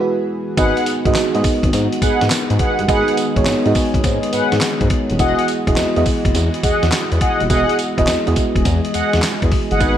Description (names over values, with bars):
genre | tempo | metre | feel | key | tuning
R&B, new jack swing | 104 BPM | 4/4 | swing 67% on 16ths | unclear | A4 = 440 Hz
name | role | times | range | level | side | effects
mellow FM electric piano | accompaniment | 0.0-10.0 s | G#3 to D#5 | -20 LUFS | right 3 dB | chorus
chorused pulse-width pad | sustained chords | 0.0-10.0 s | D#3 to D#5 | -23 LUFS | left 2 dB | none
mellow synth brass | stabs | 0.6-10.0 s | G#4 to F#5 | -21 LUFS | equal | chorus
smooth synth bass | bass | 0.6-10.0 s | D#1 to G#2 | -20 LUFS | equal | none
dusty soul sampler-style drum kit | drums | 0.6-10.0 s | handclaps, hi-hat, kick drum, snare drum, tambourine | -19 LUFS | equal | gated reverb
room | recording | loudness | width
little or no reverb | none | -14 LUFS | side -10 dB against mid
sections
0.6-10.0 A section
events
break 0.0-0.6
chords
0.0 F#9sus4; 0.6 G#m7; 5.2 Emaj9